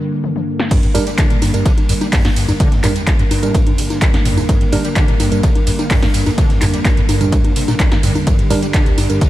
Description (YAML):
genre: acid house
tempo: 127 BPM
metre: 4/4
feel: straight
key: G minor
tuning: A4 = 441 Hz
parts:
  - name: lush unison pad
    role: sustained chords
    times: 0.0-9.3 s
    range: G2 to Bb3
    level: -21 LUFS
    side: equal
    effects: chorus, sidechain pumping
  - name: electro analog drum machine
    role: drums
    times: 0.2-9.3 s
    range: congas, crash cymbal, handclaps, hi-hat, snare drum, tambourine, toms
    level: -20 LUFS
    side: equal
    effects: low-pass filter on toms, low-pass filter on snare, low-pass filter on hats, low-pass filter on cymbals, low-pass filter on perc
  - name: acid bass, square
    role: riff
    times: 0.7-9.3 s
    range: G1 to G3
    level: -20 LUFS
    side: equal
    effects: ensemble chorus
  - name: electronic kick drum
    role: drums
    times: 0.7-9.3 s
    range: none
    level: -15 LUFS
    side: equal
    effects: none
  - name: loose indie drum kit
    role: drums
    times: 0.7-9.3 s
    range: hi-hat, ride cymbal, snare drum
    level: -32 LUFS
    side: equal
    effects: none
  - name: tine electric piano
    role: stabs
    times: 0.9-9.2 s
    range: G3 to Bb4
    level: -23 LUFS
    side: right 3 dB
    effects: ping-pong delay
room: little or no reverb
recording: none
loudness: -12 LUFS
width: side -15 dB against mid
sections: 0.7-9.3 A section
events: break 0.0-0.7; drum fill 0.2-0.7; drop 0.7-9.3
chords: 0.0 Gm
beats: 0.24 | 0.71 1.18 1.66 2.13 | 2.60 3.07 3.54 4.02 | 4.49 4.96 5.43 5.91 | 6.38 6.85 7.32 7.80 | 8.27 8.74 9.21